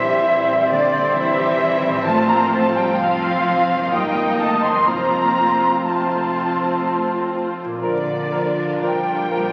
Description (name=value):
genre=classical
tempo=58-67 BPM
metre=3/4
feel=rubato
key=unclear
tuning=A4 = 441 Hz
part: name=rich studio violin section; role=melody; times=0.0-9.5 s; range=Bb4 to Eb5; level=-36 LUFS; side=equal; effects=none
part: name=large flute ensemble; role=second line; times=0.0-9.5 s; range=D5 to C6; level=-23 LUFS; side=equal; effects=none
part: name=mellow cor anglais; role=second line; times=0.0-9.5 s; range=Bb4 to Eb5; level=-28 LUFS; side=equal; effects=none
part: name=rich studio violin section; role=second line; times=0.0-9.5 s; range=D5 to C6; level=-31 LUFS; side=equal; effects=none
part: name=mellow bassoon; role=accompaniment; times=0.0-9.5 s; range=Eb3 to G3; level=-30 LUFS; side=equal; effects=none
part: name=rich studio viola section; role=accompaniment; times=0.0-9.5 s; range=Bb3 to G4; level=-28 LUFS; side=equal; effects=none
part: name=mellow French horn section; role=sustained chords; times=0.0-9.5 s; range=F3 to F4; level=-29 LUFS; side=equal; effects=none
part: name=concert harp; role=arpeggios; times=0.0-9.5 s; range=F2 to Eb5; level=-33 LUFS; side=equal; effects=none
part: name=rich studio cello section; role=bass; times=0.0-9.5 s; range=D3 to C4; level=-29 LUFS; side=equal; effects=none
part: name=rich studio double bass section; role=bass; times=0.0-9.5 s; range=F1 to Bb1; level=-36 LUFS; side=equal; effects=none
part: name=timpani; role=percussion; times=4.9-6.3 s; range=F2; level=-42 LUFS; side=equal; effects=none
room=wet concert hall reverb, RT60 2.2 s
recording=very old 78 rpm record, vinyl crackle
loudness=-19 LUFS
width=mono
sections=0.0-9.5 A section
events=none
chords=0.0 C7/Bb; 2.1 F/A; 3.9 Eb/G; 4.9 F; 7.8 Bb